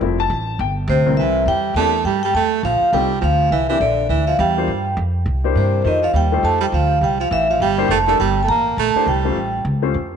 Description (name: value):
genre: jazz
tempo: 205 BPM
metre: 4/4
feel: swing 60% on 8ths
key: C mixolydian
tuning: A4 = 439 Hz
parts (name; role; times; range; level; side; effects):
- warm upright piano; accompaniment; 0.0-9.9 s; C2 to A5; -23 LUFS; left 9 dB; none
- upright bass; bass; 0.0-10.2 s; F1 to G2; -21 LUFS; equal; none
- vibraphone with medium mallets; melody; 0.9-9.6 s; C5 to Bb5; -19 LUFS; equal; none
- breathy baritone saxophone; second line; 0.9-9.6 s; C3 to Bb3; -22 LUFS; right 9 dB; none
room: moderate echo chamber reverb, RT60 1.8 s, small room ambience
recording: 1960s-style stereo with parts hard left and right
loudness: -15 LUFS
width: side -7 dB against mid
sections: 0.0-1.2 A section; 1.2-10.2 B section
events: none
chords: 0.0 Fmaj7; 0.6 G5; 1.2 C7; 2.3 F7; 3.5 C7; 4.7 Fsus2; 5.3 C7; 5.9 F7; 7.0 C7; 9.4 A7alt